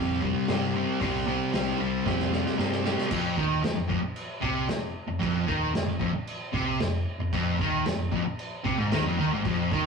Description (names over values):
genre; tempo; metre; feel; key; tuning
garage rock duo or trio; 114 BPM; 4/4; straight; unclear; A4 = 439 Hz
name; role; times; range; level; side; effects
fuzz guitar; riff; 0.0-9.9 s; F2 to C4; -26 LUFS; equal; distortion
hollow-body short-scale fingered electric bass; bass; 0.0-9.9 s; F1 to G2; -34 LUFS; equal; none
vintage drum kit; drums; 0.2-9.8 s; crash cymbal, hi-hat, kick drum, snare drum; -32 LUFS; equal; none
room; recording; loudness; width
moderate stone room reverb, RT60 1.0 s; rough rehearsal-room recording, warm saturation; -25 LUFS; side -5 dB against mid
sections
0.0-3.1 A section; 3.1-9.9 B section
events
drum fill 2.1-3.1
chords
0.0 C5; 3.1 F5